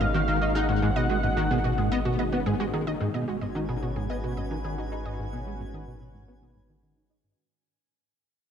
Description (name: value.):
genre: ambient, sequencer-driven space music.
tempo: 110 BPM.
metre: 4/4.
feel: straight.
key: G# minor.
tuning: A4 = 440 Hz.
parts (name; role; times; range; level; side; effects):
expressive portamento lead; melody; 0.0-2.5 s; E#5 to F#5; -30 LUFS; equal; analog chorus, ping-pong delay.
lush unison pad; sustained chords; 0.0-7.4 s; D#3 to B4; -34 LUFS; equal; chorus.
wide unison pluck; arpeggios; 0.0-5.2 s; F#4 to D#5; -35 LUFS; right 2 dB; auto-pan, ping-pong delay.
plucky analog bass; riff; 0.0-7.3 s; G#2 to D#4; -28 LUFS; equal; ensemble chorus, ping-pong delay.
warm sub bass; bass; 0.0-7.3 s; G#1; -32 LUFS; equal; none.
twinkling granular texture; texture; 3.4-7.4 s; G#5; -45 LUFS; right 2 dB; built-in reverb.
room: wet plate reverb, RT60 2.7 s.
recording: dark, warm production.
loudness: -25 LUFS.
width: side -8 dB against mid.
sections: 0.0-3.0 A section; 3.0-7.4 B section.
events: fade-out 3.0-7.4; filter sweep on analog synth bass 3.0-7.4.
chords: 0.0 G#m7.